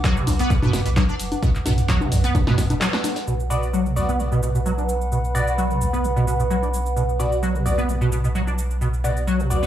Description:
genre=acid house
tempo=130 BPM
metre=4/4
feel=straight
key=B minor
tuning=A4 = 440 Hz
part: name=liquid acid bass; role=riff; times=0.0-9.7 s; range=B1 to D4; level=-23 LUFS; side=equal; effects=ensemble chorus, digital delay
part: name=electronic kick drum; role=drums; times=0.0-2.7 s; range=none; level=-20 LUFS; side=equal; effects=overdrive
part: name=loose indie drum kit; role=drums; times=0.0-3.3 s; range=hi-hat, snare drum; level=-36 LUFS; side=left 1 dB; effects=none
part: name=punchy analog drum machine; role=drums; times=0.0-9.7 s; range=congas, handclaps, hi-hat, shaker, snare drum, toms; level=-26 LUFS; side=equal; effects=overdrive
part: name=warbly tape-like pad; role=texture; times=0.0-9.7 s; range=B4 to D6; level=-30 LUFS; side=right 1 dB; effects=chorus, built-in reverb, sidechain pumping
part: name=saturated sub bass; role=bass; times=0.3-9.7 s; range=F#1 to B1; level=-24 LUFS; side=equal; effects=sidechain pumping
part: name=dark analog pad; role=sustained chords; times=3.3-9.7 s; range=B4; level=-35 LUFS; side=right 4 dB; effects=none
part: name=band-passed chord stab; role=stabs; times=3.5-9.6 s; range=B3 to D5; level=-27 LUFS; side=left 1 dB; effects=phaser, cassette tape, digital delay
room=moderate digital room reverb, RT60 1.1 s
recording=small room reverb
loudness=-19 LUFS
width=side -11 dB against mid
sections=0.0-3.3 A section; 3.3-9.7 B section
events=break 2.8-3.3; band accent 2.8; filter sweep on acid bass 3.3-9.7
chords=0.0 Bm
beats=0.04 0.50 0.96 | 1.43 1.89 2.35 2.81 | 3.27 3.73 4.20 4.66 | 5.12 5.58 6.04 6.50 | 6.96 7.43 7.89 8.35 | 8.81 9.27

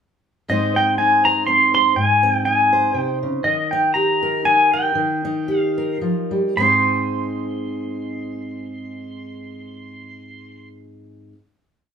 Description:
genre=acoustic folk duo or small band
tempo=107-122 BPM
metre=3/4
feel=swing 55% on 8ths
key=Ab major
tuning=A4 = 440 Hz
part: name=pedal steel guitar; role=melody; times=0.5-10.7 s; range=Eb5 to C6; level=-17 LUFS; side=equal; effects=none
part: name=fingerpicked steel-string acoustic guitar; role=accompaniment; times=0.5-11.4 s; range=Ab2 to C5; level=-23 LUFS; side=equal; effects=none
room=wet studio reverb, RT60 0.6 s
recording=band playing live in one room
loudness=-16 LUFS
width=side -7 dB against mid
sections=0.5-6.6 verse; 6.6-9.9 final chord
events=slowing down 3.4-6.6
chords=0.5 Ab; 3.4 Eb; 6.6 Ab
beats=| 0.48 0.97 1.47 | 1.96 2.45 2.95 | 3.44 3.94 4.44 | 4.95 5.47 6.01 | 6.56 7.12 7.68 | 8.24 8.80 9.36

